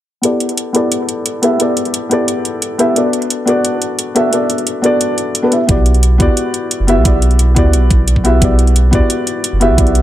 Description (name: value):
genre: liquid drum and bass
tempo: 176 BPM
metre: 4/4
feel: straight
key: E minor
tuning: A4 = 443 Hz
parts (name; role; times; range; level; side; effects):
- felt-muted upright piano; accompaniment; 0.2-10.0 s; B3 to E5; -14 LUFS; left 1 dB; low-pass filter, dub echo
- electronic hi-hat; drums; 0.2-10.0 s; none; -19 LUFS; right 1 dB; none
- warm sub bass; bass; 5.7-10.0 s; F#1 to D2; -11 LUFS; equal; tube saturation
- electronic kick drum; drums; 5.7-9.8 s; none; -14 LUFS; equal; none
room: light reverb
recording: none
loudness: -11 LUFS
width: side -13 dB against mid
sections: 0.2-10.0 A section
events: filter sweep on felt piano 0.2-10.0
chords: 0.2 A7sus4; 3.0 Bm7; 5.5 Em9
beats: | 0.23 0.58 0.92 1.26 | 1.60 1.94 2.28 2.62 | 2.96 3.30 3.64 3.98 | 4.33 4.67 5.01 5.35 | 5.69 6.03 6.37 6.71 | 7.05 7.39 7.74 8.08 | 8.42 8.76 9.10 9.44 | 9.78